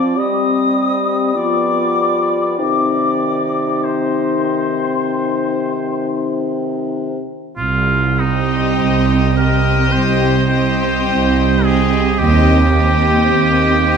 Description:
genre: classical, slow romantic movement for symphony orchestra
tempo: 47-55 BPM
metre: 4/4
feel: rubato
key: C minor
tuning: A4 = 441 Hz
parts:
  - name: mellow flute section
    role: second line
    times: 0.0-6.3 s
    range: C6 to Eb6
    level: -21 LUFS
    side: left 5 dB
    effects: none
  - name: warm clarinet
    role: second line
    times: 0.0-7.2 s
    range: C4 to F4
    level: -22 LUFS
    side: left 2 dB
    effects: none
  - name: warm oboe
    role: second line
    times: 0.0-14.0 s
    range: Eb4 to Eb5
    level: -21 LUFS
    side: right 1 dB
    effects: none
  - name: mellow bassoon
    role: accompaniment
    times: 0.0-7.2 s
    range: C3 to G3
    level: -21 LUFS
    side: right 1 dB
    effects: none
  - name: warm French horn section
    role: sustained chords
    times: 0.0-7.2 s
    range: Eb3 to C4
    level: -22 LUFS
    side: left 5 dB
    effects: none
  - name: dark studio cello section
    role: bass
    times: 7.6-14.0 s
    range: C2 to Eb2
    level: -18 LUFS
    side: right 3 dB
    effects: none
  - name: warm studio double bass section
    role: bass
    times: 7.6-14.0 s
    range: C2 to Eb2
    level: -18 LUFS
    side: right 4 dB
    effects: none
  - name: rich studio violin section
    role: melody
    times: 8.2-14.0 s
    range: Eb5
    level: -24 LUFS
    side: left 4 dB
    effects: none
  - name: warm studio violin section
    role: second line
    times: 8.2-14.0 s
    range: G4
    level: -22 LUFS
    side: left 5 dB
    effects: none
  - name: dark symphonic viola section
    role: accompaniment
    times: 8.2-14.0 s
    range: C4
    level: -19 LUFS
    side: right 3 dB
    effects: none
room: moderate scoring stage reverb, RT60 1.8 s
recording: none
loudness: -13 LUFS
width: side -6 dB against mid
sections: 0.0-7.6 A section; 7.6-14.0 A section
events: none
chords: 0.2 Cm/G; 1.4 G7/F; 2.6 Cm; 12.2 Cm/Eb

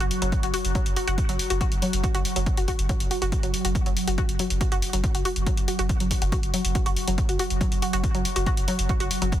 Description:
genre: driving peak-time techno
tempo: 140 BPM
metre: 4/4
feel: straight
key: unclear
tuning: A4 = 440 Hz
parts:
  - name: analog pluck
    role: riff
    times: 0.0-9.3 s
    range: F#3 to F#4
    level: -30 LUFS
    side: equal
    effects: chorus, vintage 12-bit sampler grit, sidechain pumping, dub echo
  - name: saturated sub bass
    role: bass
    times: 0.0-9.3 s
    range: F#1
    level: -28 LUFS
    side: equal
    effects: sidechain pumping, low-pass filter
  - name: deep dark ambient pad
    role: drone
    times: 0.0-9.4 s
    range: F#3 to F#4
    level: -32 LUFS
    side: equal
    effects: chorus, built-in reverb, sidechain pumping
  - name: electronic hi-hat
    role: drums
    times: 0.0-9.4 s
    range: none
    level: -31 LUFS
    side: left 1 dB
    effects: sidechain pumping on hats
  - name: electronic kick drum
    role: drums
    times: 0.3-9.4 s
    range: none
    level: -26 LUFS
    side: equal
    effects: none
room: digital ambience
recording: dense, heavily limited modern master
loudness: -22 LUFS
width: side -12 dB against mid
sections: 0.0-9.4 A section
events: filter sweep on synth arpeggio sound 0.0-9.4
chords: 0.0 F#5

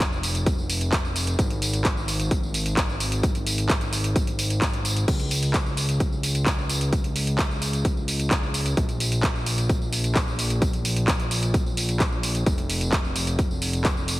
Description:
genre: EDM, festival progressive house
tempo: 130 BPM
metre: 4/4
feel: straight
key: unclear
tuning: A4 = 440 Hz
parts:
  - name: fat analog bass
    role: bass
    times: 0.0-14.2 s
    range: F1 to Bb1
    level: -26 LUFS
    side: equal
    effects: sidechain pumping
  - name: electronic kick drum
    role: drums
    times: 0.0-13.9 s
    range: none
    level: -24 LUFS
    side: equal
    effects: overdrive
  - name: pop drum kit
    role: drums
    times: 0.0-14.2 s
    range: crash cymbal, handclaps, hi-hat, tambourine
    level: -27 LUFS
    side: equal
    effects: none
room: light reverb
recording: heavily compressed radio sound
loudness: -21 LUFS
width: side -18 dB against mid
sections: 0.0-14.2 A section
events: none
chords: none

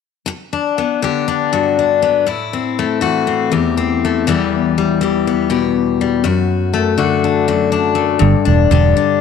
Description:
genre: highlife guitar band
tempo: 121 BPM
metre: 4/4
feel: swing 54% on 16ths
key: G major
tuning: A4 = 439 Hz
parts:
  - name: picked steel-string acoustic guitar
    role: accompaniment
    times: 0.3-9.2 s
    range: E2 to G4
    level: -14 LUFS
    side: left 7 dB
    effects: none
  - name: fingered electric bass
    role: bass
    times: 8.2-8.9 s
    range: E1 to G1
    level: -12 LUFS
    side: right 3 dB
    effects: none
room: moderate echo chamber reverb, RT60 1.5 s, small room ambience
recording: none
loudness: -13 LUFS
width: side -6 dB against mid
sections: 0.3-8.2 A section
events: none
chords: 0.3 G; 2.3 Am; 4.3 Em; 6.2 D/F#; 8.2 G5

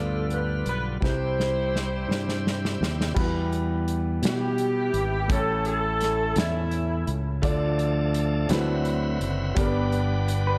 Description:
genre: slow gospel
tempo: 56 BPM (dotted quarters)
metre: 6/8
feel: straight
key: unclear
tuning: A4 = 440 Hz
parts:
  - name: warm saxophone section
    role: melody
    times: 0.0-7.4 s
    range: A3 to C5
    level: -32 LUFS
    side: equal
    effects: analog delay
  - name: clear concert grand piano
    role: accompaniment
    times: 0.0-10.6 s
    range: G2 to D5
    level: -32 LUFS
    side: equal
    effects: none
  - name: bright tonewheel organ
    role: sustained chords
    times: 0.0-3.1, 7.4-10.6 s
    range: D3 to B4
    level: -36 LUFS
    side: equal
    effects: fast rotary speaker
  - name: fingered electric bass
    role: bass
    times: 0.0-10.6 s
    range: F#1 to B2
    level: -30 LUFS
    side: equal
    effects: none
  - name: natural country drum kit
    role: drums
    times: 0.3-10.4 s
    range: crash cymbal, hi-hat, kick drum, snare drum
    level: -31 LUFS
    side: equal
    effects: none
  - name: breathy alto saxophone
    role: melody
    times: 4.3-7.1 s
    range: E4 to A4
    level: -34 LUFS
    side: equal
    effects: analog delay
  - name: clean electric guitar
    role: second line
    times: 10.5-10.6 s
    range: B4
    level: -28 LUFS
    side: equal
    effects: none
room: wet plate reverb, RT60 1.6 s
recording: dreamy mix soaked in reverb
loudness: -25 LUFS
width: mono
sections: 0.0-3.2 A section; 3.2-10.6 B section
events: drum fill 1.0-3.2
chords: 0.0 G7; 1.0 C; 3.2 Em; 5.3 A; 7.4 Dm; 8.5 D13; 9.6 G

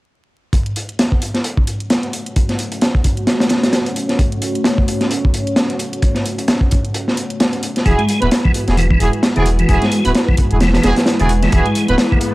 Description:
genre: breakbeat, breaks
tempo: 131 BPM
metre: 4/4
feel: swing 57% on 16ths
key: F# minor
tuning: A4 = 440 Hz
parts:
  - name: dark analog pad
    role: sustained chords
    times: 2.0-12.3 s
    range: G#3 to C#5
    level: -23 LUFS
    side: equal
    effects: chorus, vintage 12-bit sampler grit, sidechain pumping
  - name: crunchy breakbeat drum kit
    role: drums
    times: 0.5-12.3 s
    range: hi-hat, kick drum, snare drum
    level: -16 LUFS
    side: equal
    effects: none
  - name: electronic hi-hat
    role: drums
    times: 0.5-12.3 s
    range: none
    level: -31 LUFS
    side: right 1 dB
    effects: overdrive
  - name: tonewheel organ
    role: riff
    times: 7.9-12.2 s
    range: D3 to B3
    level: -20 LUFS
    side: equal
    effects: chorus vibrato, fast rotary speaker, tube saturation, vintage 12-bit sampler grit, analog delay
  - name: bright brass ensemble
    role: stabs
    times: 7.9-12.0 s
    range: E4 to B4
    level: -20 LUFS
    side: right 2 dB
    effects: analog delay
  - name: saturated sub bass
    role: bass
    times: 7.9-11.9 s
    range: D1 to E1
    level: -16 LUFS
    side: equal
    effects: none
  - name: riser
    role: sound effects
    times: 11.8-12.3 s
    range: none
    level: -27 LUFS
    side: left 3 dB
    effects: none
room: studio ambience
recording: dry, gritty hardware recording, vinyl crackle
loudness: -13 LUFS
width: side -19 dB against mid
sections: 0.5-12.3 A section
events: riser 11.8-12.3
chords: 0.5 F#m; 7.9 Eadd9

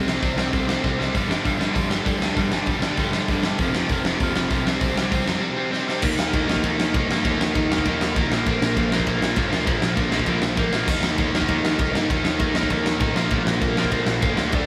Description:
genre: punk rock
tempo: 197 BPM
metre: 4/4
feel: straight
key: unclear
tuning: A4 = 440 Hz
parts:
  - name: overdriven electric guitar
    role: riff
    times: 0.0-14.7 s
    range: F2 to Eb4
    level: -25 LUFS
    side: equal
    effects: none
  - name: fuzz picked electric bass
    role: bass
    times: 0.0-14.7 s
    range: F1 to G2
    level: -32 LUFS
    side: equal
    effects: overdrive
  - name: big rock drum kit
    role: drums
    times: 0.1-14.6 s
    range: crash cymbal, hi-hat, kick drum, ride cymbal, snare drum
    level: -26 LUFS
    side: equal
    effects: none
room: light reverb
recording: band playing live in one room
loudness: -22 LUFS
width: mono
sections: 0.0-6.0 A section; 6.0-14.7 B section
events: drum fill 0.8-1.1, 5.7-6.0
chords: 0.0 C5; 1.1 G5; 3.6 F5; 4.7 C5; 6.0 Eb5; 8.3 Bb5; 10.9 Eb5; 13.2 Bb5

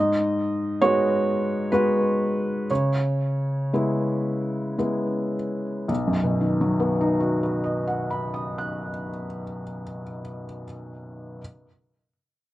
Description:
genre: neoclassical minimalist piano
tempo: 54-69 BPM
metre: 3/4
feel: rubato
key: B major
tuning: A4 = 436 Hz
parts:
  - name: felt-muted upright piano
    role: solo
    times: 0.0-11.4 s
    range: B1 to F#6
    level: -22 LUFS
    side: equal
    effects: slapback echo
room: little or no reverb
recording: recorded outdoors, with no room sound, nothing above 10.5 kHz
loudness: -22 LUFS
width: side -15 dB against mid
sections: 0.0-5.9 A section; 5.9-9.2 B section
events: slowing down 0.0-5.9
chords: 0.0 G#m7; 2.7 C#m7; 5.9 B

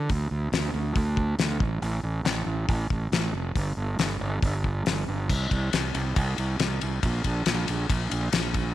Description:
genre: classic rock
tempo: 138 BPM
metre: 4/4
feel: straight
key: D minor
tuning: A4 = 441 Hz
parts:
  - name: fuzz fingered electric bass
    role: bass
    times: 0.0-8.7 s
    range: F1 to D2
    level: -27 LUFS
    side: right 1 dB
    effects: overdrive
  - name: damped 70s drum kit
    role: drums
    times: 0.1-8.6 s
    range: crash cymbal, hi-hat, kick drum, ride cymbal, snare drum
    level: -27 LUFS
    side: left 2 dB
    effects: none
room: light reverb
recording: 1960s-style stereo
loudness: -24 LUFS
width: side -14 dB against mid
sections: 0.0-5.3 A section; 5.3-8.7 B section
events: none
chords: none

